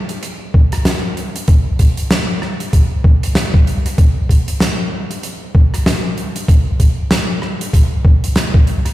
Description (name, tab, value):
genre	glitch hop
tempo	96 BPM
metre	4/4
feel	swing 58% on 16ths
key	none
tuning	none
part	huge arena drum kit	drums	0.1-8.9 s	hi-hat, rim click, snare drum	-19 LUFS	equal	none
part	electronic kick drum	drums	0.5-8.6 s	none	-10 LUFS	equal	none
room	little or no reverb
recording	played on a big sound system in a bare room, large studio reverb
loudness	-12 LUFS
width	side -15 dB against mid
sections	0.0-8.9 A section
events	none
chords	none